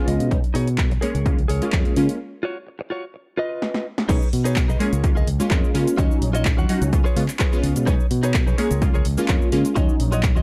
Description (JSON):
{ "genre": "filtered disco house", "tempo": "127 BPM", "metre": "4/4", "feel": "straight", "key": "unclear", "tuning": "A4 = 444 Hz", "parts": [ { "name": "funky polysynth comp", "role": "accompaniment", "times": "0.0-10.4 s", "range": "Gb3 to Ab4", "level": "-26 LUFS", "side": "equal", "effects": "chorus, phaser, sidechain pumping, low-pass filter" }, { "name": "direct-recorded clean electric guitar", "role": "riff", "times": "0.0-10.4 s", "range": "D#4 to Gb5", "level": "-30 LUFS", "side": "equal", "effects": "subtle chorus, sidechain pumping, low-pass filter" }, { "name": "fingered electric bass", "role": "bass", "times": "0.1-10.4 s", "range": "Bb1 to Db3", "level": "-25 LUFS", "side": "equal", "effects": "sidechain pumping, low-pass filter" }, { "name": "punchy analog drum machine", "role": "drums", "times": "0.1-10.4 s", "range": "crash cymbal, handclaps, hi-hat, shaker, snare drum", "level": "-32 LUFS", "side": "equal", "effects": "overdrive, sidechain pumping on hats, sidechain pumping on cymbals, sidechain pumping on perc" }, { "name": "electronic kick drum", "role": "drums", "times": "0.3-10.3 s", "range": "none", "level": "-23 LUFS", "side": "equal", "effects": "overdrive" } ], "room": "digital ambience", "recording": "dry, gritty hardware recording", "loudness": "-21 LUFS", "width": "mono", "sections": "0.0-4.1 A section; 4.1-10.4 B section", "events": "clean electric guitar fill 0.0-0.3, 10.2; filter sweep 0.0-4.1; break 2.2-4.1; drum fill 3.6-4.1; drop 4.1-10.4", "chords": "0.3 B69; 1.0 Bbm7/Db; 2.2 Dbadd11/F; 3.1 B; 4.1 B69; 4.8 Bbm7/Db; 6.0 Ebm9; 6.9 Db7; 7.9 B69; 8.6 Bbm7/Db; 9.8 Ebm9", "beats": "| 0.31 0.79 1.26 1.73 | 2.20 2.68 3.15 3.62 | 4.09 4.57 5.04 5.51 | 5.98 6.46 6.93 7.40 | 7.87 8.35 8.82 9.29 | 9.76 10.23" }